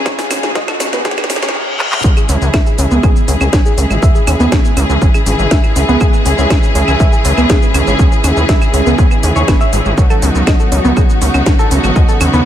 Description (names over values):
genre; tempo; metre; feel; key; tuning
melodic techno; 121 BPM; 4/4; straight; unclear; A4 = 439 Hz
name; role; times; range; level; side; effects
rich studio string section; sustained chords; 0.0-12.5 s; C#3 to G#4; -17 LUFS; equal; sidechain pumping
swarming drone; drone; 0.0-1.5 s; C#3; -34 LUFS; right 1 dB; none
riser and reverse cymbal; sound effects; 0.0-2.0 s; none; -22 LUFS; equal; none
warbly dusty pluck; arpeggios; 0.1-12.4 s; B3 to E5; -18 LUFS; right 1 dB; chorus, sidechain pumping, tape echo
gritty driven synth bass; bass; 0.1-12.4 s; G#1 to D#2; -15 LUFS; equal; sidechain pumping
electronic kick drum; drums; 0.1-12.1 s; none; -11 LUFS; equal; none
techno drum kit; drums; 0.1-12.4 s; claves, handclaps, hi-hat, shaker, snare drum; -19 LUFS; equal; none
room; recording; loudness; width
light reverb, digital ambience; high-pass filter; -10 LUFS; side -11 dB against mid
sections
0.0-2.0 A section; 2.0-12.5 B section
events
build-up 0.0-2.0; drum fill 0.0-1.5, 1.8; riser 0.0-1.5; filter sweep on synth arpeggio sound 0.0-2.0; reverse cymbal 1.1-2.0; drop 2.0-12.5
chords
0.0 Badd9; 2.0 C#m; 10.0 Badd9